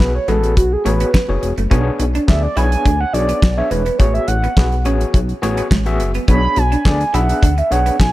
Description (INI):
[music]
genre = early-eighties boogie funk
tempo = 105 BPM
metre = 4/4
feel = straight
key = B dorian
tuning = A4 = 440 Hz
[part]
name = mellow horn-like synth lead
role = melody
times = 0.0-8.1 s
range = F#4 to B5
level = -20 LUFS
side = right 2 dB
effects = chorus
[part]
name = overdriven tine electric piano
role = accompaniment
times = 0.0-8.0 s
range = B3 to E5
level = -22 LUFS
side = left 2 dB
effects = medium tremolo
[part]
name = chorused synth bass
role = bass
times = 0.0-8.1 s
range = E1 to D2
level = -18 LUFS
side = equal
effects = none
[part]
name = damped 70s drum kit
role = drums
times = 0.0-8.1 s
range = handclaps, hi-hat, kick drum, snare drum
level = -16 LUFS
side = equal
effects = none
[part]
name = clean electric guitar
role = riff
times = 0.3-8.0 s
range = G#3 to E4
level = -26 LUFS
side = right 4 dB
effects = wide subtle chorus
[sound]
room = small room ambience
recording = none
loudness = -13 LUFS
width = side -16 dB against mid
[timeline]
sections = 0.0-8.1 A section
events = soft synth lead solo 0.0-8.1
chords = 0.0 Amaj13; 1.7 Bm69; 4.0 Amaj13; 6.3 Bm69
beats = 0.00 0.57 1.14 | 1.71 2.28 2.85 3.42 | 4.00 4.57 5.14 5.71 | 6.28 6.85 7.42 8.00